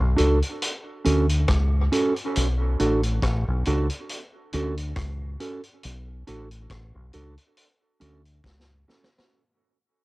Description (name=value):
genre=dub reggae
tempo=69 BPM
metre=4/4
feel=swing 56% on 16ths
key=unclear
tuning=A4 = 444 Hz
part: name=mellow electric guitar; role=accompaniment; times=0.0-9.1 s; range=C#4 to A4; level=-26 LUFS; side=right 2 dB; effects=cassette tape, dub echo
part: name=deep dub fingered electric bass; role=bass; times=0.0-8.8 s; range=A1 to D2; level=-24 LUFS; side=equal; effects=tube saturation
part: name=vintage drum kit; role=drums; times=0.2-9.4 s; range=hi-hat, kick drum, rim click, snare drum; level=-30 LUFS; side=equal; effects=cassette tape
room=light reverb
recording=home recording on cassette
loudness=-22 LUFS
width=side -21 dB against mid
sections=0.0-9.3 A section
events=fade-out 0.0-9.3; drum fill 8.4-9.3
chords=0.0 Bm7; 0.6 Dmaj7; 2.4 Bm7; 4.1 Dmaj7; 5.8 Bm7; 7.6 Dmaj7